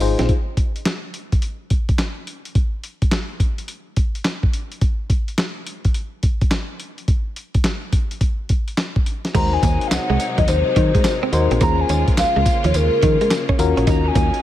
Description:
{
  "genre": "R&B, new jack swing",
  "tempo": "106 BPM",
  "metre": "4/4",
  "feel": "swing 65% on 16ths",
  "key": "unclear",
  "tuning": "A4 = 438 Hz",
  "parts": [
    { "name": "FM electric piano with auto-pan", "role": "accompaniment", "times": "0.0-0.3, 9.3-14.4 s", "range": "Db4 to C5", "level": "-24 LUFS", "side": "left 6 dB", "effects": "none" },
    { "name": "rich studio string section", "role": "sustained chords", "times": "0.0-0.3, 9.3-14.4 s", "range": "C3 to F4", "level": "-27 LUFS", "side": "left 1 dB", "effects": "none" },
    { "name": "direct-recorded clean electric guitar", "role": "riff", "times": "0.0-0.3, 9.3-14.3 s", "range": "F3 to Eb4", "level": "-25 LUFS", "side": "right 6 dB", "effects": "wide subtle chorus" },
    { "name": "slap-like FM bass", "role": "bass", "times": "0.0-0.3, 9.3-14.3 s", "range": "Ab1 to Eb3", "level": "-20 LUFS", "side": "equal", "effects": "none" },
    { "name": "dusty soul sampler-style drum kit", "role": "drums", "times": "0.0-14.4 s", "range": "crash cymbal, handclaps, hi-hat, kick drum, snare drum, tambourine", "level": "-19 LUFS", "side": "equal", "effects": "overdrive" },
    { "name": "hollow clarinet-like synth lead", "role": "melody", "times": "9.4-14.4 s", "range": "Bb4 to Bb5", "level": "-21 LUFS", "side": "left 2 dB", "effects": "chorus, phaser" }
  ],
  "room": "little or no reverb",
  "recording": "none",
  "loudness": "-17 LUFS",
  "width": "side -13 dB against mid",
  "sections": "0.3-9.3 A section; 9.3-14.4 B section",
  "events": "none",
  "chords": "0.3 N.C.; 9.3 Ab7; 11.6 Bbm7; 13.6 Ebm7"
}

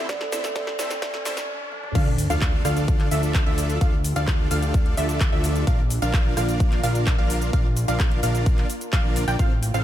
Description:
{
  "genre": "EDM, festival progressive house",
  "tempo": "129 BPM",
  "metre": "4/4",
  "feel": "straight",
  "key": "D minor",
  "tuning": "A4 = 440 Hz",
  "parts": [
    { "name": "warm concert grand piano", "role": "accompaniment", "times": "0.0-1.4 s", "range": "C3 to E4", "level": "-40 LUFS", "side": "right 1 dB", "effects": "sidechain pumping, tape echo" },
    { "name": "lush unison pad", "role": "sustained chords", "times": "0.0-9.8 s", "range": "A2 to A4", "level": "-36 LUFS", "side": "equal", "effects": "none" },
    { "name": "dense compressed supersaw", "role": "riff", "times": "0.0-9.8 s", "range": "C4 to G5", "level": "-28 LUFS", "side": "equal", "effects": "sidechain pumping, tape echo" },
    { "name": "riser and sub drop", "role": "sound effects", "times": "0.0-3.8 s", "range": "none", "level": "-32 LUFS", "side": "equal", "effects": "none" },
    { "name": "kalimba", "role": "melody", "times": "0.1-1.4 s", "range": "A4 to D5", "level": "-31 LUFS", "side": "right 3 dB", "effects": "tape echo" },
    { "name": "big-room dance drum kit", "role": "drums", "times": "0.1-9.8 s", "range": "crash cymbal, handclaps, hi-hat, rim click, shaker, snare drum, toms", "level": "-31 LUFS", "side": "equal", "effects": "none" },
    { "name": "electronic kick drum", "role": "drums", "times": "0.1-9.5 s", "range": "none", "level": "-21 LUFS", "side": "equal", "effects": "none" },
    { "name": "wide unison pluck", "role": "arpeggios", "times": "2.0-9.8 s", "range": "E5 to G5", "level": "-31 LUFS", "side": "right 1 dB", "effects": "sidechain pumping, tape echo" },
    { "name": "fat analog bass", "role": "bass", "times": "2.0-9.8 s", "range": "A1 to D2", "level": "-25 LUFS", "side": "equal", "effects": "sidechain pumping" }
  ],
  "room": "little or no reverb",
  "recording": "high-pass filter",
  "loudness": "-20 LUFS",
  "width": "side -12 dB against mid",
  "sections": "0.0-2.0 A section; 2.0-9.8 B section",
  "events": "build-up 0.0-2.0; drum fill 0.0-1.5, 1.7; riser 0.0-2.0; stop 1.5-2.0; drop 2.0-9.8; impact 2.0-3.8",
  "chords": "0.0 Asus4; 2.0 Dm; 5.7 Bb"
}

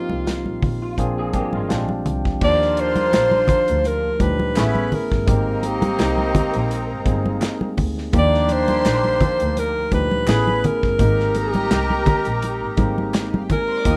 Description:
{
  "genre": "lush 1970s-style soul",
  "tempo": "84 BPM",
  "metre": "4/4",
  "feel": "swing 54% on 16ths",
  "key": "Eb major",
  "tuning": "A4 = 441 Hz",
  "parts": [
    { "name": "breathy alto saxophone", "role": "melody", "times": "0.0-14.0 s", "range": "F4 to D5", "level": "-24 LUFS", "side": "equal", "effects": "none" },
    { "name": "barky tine electric piano", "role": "accompaniment", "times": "0.0-14.0 s", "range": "Bb2 to G5", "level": "-29 LUFS", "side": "equal", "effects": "none" },
    { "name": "dark double bass", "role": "bass", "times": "0.1-14.0 s", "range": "G1 to Eb2", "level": "-26 LUFS", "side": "equal", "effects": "none" },
    { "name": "congas", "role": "percussion", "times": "0.1-13.7 s", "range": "none", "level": "-27 LUFS", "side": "equal", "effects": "none" },
    { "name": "warm soul drum kit", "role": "drums", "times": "0.3-14.0 s", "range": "crash cymbal, hi-hat, kick drum, snare drum", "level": "-25 LUFS", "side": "equal", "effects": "none" },
    { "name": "electric guitar through a small old amp", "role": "riff", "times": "0.8-1.9 s", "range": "Ab3 to Ab4", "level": "-33 LUFS", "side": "equal", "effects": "ensemble chorus" },
    { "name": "warm studio violin section", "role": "second line", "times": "2.4-14.0 s", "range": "Eb4 to Eb6", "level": "-35 LUFS", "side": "equal", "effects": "none" },
    { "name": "clear horn section", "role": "stabs", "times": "2.4-14.0 s", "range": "Bb3 to B4", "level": "-28 LUFS", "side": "equal", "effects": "none" },
    { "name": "group handclap", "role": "percussion", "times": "3.1-13.3 s", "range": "none", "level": "-37 LUFS", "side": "equal", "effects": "none" }
  ],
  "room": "moderate studio reverb, RT60 0.6 s",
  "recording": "rough home demo mix",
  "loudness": "-20 LUFS",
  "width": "mono",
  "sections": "0.0-2.4 A section; 2.4-14.0 B section",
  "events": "tine electric piano fill 1.3-2.4",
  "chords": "0.0 Eb69; 1.0 Bb9; 1.7 Bb13; 2.4 Ebmaj9; 4.6 Amaj9; 5.3 Abmaj9; 8.1 Ebmaj9; 10.3 Amaj9; 11.0 Abmaj9"
}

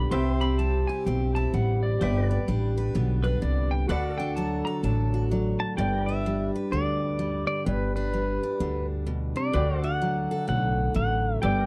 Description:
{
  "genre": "honky-tonk and classic country",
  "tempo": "127 BPM",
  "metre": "4/4",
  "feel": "swing 62% on 8ths",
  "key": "G major",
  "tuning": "A4 = 440 Hz",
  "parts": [
    { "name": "pedal steel guitar", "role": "second line", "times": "0.0-5.3 s", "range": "B4 to C6", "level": "-36 LUFS", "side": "equal", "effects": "none" },
    { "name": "picked steel-string acoustic guitar", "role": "accompaniment", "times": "0.0-11.7 s", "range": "G2 to B4", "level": "-32 LUFS", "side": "equal", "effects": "none" },
    { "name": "warm upright piano", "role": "accompaniment", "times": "0.0-11.7 s", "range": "F#4 to E5", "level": "-40 LUFS", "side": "equal", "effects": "none" },
    { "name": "pedal steel guitar", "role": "sustained chords", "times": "0.0-11.7 s", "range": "A4 to G5", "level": "-41 LUFS", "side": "equal", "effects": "none" },
    { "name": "upright bass", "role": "bass", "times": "0.0-11.7 s", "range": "G1 to D2", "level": "-29 LUFS", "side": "equal", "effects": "none" },
    { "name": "pedal steel guitar", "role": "melody", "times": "5.6-11.7 s", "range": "B4 to A5", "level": "-32 LUFS", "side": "equal", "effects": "none" }
  ],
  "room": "little or no reverb",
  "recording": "dry, close 1970s-style studio recording, lossy compression artefacts",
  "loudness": "-26 LUFS",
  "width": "mono",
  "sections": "0.0-5.8 A section; 5.8-11.7 B section",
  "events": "pedal steel guitar solo 0.0-5.8",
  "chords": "0.1 C; 2.0 G; 3.9 D; 5.8 G; 9.5 D"
}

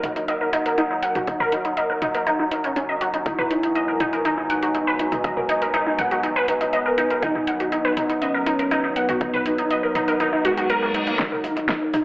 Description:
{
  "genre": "melodic techno",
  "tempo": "121 BPM",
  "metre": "4/4",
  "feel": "straight",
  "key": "Eb minor",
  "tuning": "A4 = 440 Hz",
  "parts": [
    { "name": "dark analog pad", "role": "sustained chords", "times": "0.0-12.0 s", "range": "Gb3 to G#5", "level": "-30 LUFS", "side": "equal", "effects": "chorus, sidechain pumping" },
    { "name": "wide unison pluck", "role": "arpeggios", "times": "0.0-12.0 s", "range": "Bb3 to Gb5", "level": "-21 LUFS", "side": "equal", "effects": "lush chorus, sidechain pumping, dub echo" },
    { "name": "tight sequencer bass", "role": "bass", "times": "0.0-11.2 s", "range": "Eb1", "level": "-32 LUFS", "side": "equal", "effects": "sidechain pumping" },
    { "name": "overtone-sweeping drone", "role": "drone", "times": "0.0-12.0 s", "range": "Gb3", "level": "-31 LUFS", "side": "equal", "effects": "chorus, built-in reverb, sidechain pumping" },
    { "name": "deep house drum kit", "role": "drums", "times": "0.0-12.0 s", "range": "hi-hat, snare drum, toms", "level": "-30 LUFS", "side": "equal", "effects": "dub echo" },
    { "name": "soft octave-layered synth lead", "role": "melody", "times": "3.3-12.0 s", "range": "Ab3 to B4", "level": "-26 LUFS", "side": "equal", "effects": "chorus, phaser, sidechain pumping, dub echo" },
    { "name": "reverse cymbal and riser", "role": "sound effects", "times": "10.5-12.0 s", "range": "none", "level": "-30 LUFS", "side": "left 1 dB", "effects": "none" },
    { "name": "electronic kick drum", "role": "drums", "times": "11.2-11.8 s", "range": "none", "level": "-28 LUFS", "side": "equal", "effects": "high-pass filter on kick, high-pass filter on room" }
  ],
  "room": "wet plate reverb, RT60 1.3 s, digital ambience",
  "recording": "echo-heavy mix, telephone sound",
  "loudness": "-19 LUFS",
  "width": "side -23 dB against mid",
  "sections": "0.0-11.2 A section",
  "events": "filter sweep on synth pluck 0.0-11.2; reverse cymbal 10.5-11.2; drum fill 11.2-12.0",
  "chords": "0.0 Ebm; 3.3 E/Eb; 7.2 B/D#; 11.2 Ebm"
}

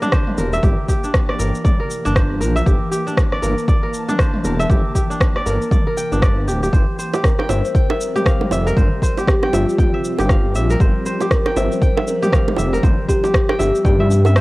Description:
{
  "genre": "afro house",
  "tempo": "118 BPM",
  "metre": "4/4",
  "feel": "swing 59% on 16ths",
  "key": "G dorian",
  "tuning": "A4 = 440 Hz",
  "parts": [
    { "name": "ethereal airy pad", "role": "sustained chords", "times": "0.0-14.4 s", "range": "E3 to A5", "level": "-27 LUFS", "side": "left 1 dB", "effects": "ensemble chorus, built-in reverb, sidechain pumping, cassette tape" },
    { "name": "kora", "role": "arpeggios", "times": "0.0-14.4 s", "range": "D4 to G5", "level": "-23 LUFS", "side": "equal", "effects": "sidechain pumping, low-pass filter, cassette tape" },
    { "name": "deep house drum kit", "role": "drums", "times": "0.0-14.4 s", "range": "rim click, shaker, toms", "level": "-24 LUFS", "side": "equal", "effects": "cassette tape" },
    { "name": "electronic kick drum", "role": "drums", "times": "0.1-14.0 s", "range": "none", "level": "-16 LUFS", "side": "equal", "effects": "cassette tape" },
    { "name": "dark detuned saw bass", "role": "bass", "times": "0.4-14.4 s", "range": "D1 to G2", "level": "-18 LUFS", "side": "equal", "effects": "sidechain pumping" },
    { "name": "bongos", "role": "percussion", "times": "7.1-14.3 s", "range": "none", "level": "-24 LUFS", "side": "right 5 dB", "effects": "none" },
    { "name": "kalimba", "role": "melody", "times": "7.2-14.1 s", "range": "F4 to C5", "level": "-22 LUFS", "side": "left 1 dB", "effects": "cassette tape, analog delay" }
  ],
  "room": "light reverb",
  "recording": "home recording on cassette",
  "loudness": "-15 LUFS",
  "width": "side -20 dB against mid",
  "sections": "0.0-14.4 A section",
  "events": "drum fill 13.9-14.4",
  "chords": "0.0 Gm69; 6.7 Csus4"
}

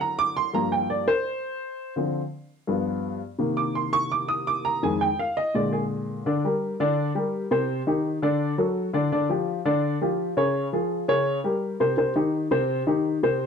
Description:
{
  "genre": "jazz",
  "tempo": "168 BPM",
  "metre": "4/4",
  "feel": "straight",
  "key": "unclear",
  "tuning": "A4 = 440 Hz",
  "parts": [
    { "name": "warm upright piano", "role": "solo", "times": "0.0-13.5 s", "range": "F2 to Eb6", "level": "-23 LUFS", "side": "equal", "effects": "none" }
  ],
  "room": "moderate studio reverb, RT60 0.8 s",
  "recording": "dark, warm production",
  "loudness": "-23 LUFS",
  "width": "side -6 dB against mid",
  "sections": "0.0-6.3 A section; 6.3-13.5 B section",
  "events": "upright piano solo 0.0-6.3",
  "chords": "0.0 D7b13; 0.5 Gm7; 2.0 Dm7; 2.7 G7; 3.4 Cm7; 4.8 Fm7; 5.5 Bb7; 6.3 Gmadd11; 7.7 Cmadd9; 8.4 D; 9.1 G5; 10.6 Db; 11.3 Bbm69; 12.0 Cm"
}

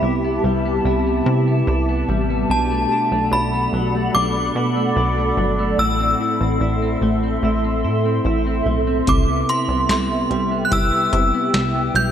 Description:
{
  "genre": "dream pop",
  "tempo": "73 BPM",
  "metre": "4/4",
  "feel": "straight",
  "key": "C lydian",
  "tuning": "A4 = 439 Hz",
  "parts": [
    { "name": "synth chime", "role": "melody", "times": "0.0-12.1 s", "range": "A5 to G6", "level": "-22 LUFS", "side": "equal", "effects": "ensemble chorus, digital delay" },
    { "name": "granular cloud pad", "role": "sustained chords", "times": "0.0-12.1 s", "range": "G4 to C6", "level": "-24 LUFS", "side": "right 1 dB", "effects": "built-in reverb, ensemble chorus" },
    { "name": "clean electric guitar", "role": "arpeggios", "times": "0.0-12.1 s", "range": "A2 to E4", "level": "-22 LUFS", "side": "left 1 dB", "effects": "wide subtle chorus, digital delay" },
    { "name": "plucky analog bass", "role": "bass", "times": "0.0-12.1 s", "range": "G1 to C3", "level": "-22 LUFS", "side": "equal", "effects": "none" },
    { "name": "booming analog drum machine", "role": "drums", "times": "9.1-12.1 s", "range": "hi-hat, kick drum, snare drum", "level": "-21 LUFS", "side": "equal", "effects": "gated reverb" }
  ],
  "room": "wet lush hall reverb, RT60 2.7 s",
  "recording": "bright 1980s-style digital production",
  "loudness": "-16 LUFS",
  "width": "side -9 dB against mid",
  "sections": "0.0-12.1 A section",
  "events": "none",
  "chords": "0.0 Cmaj7; 2.5 Bm7; 5.8 Am; 9.1 Cmaj7"
}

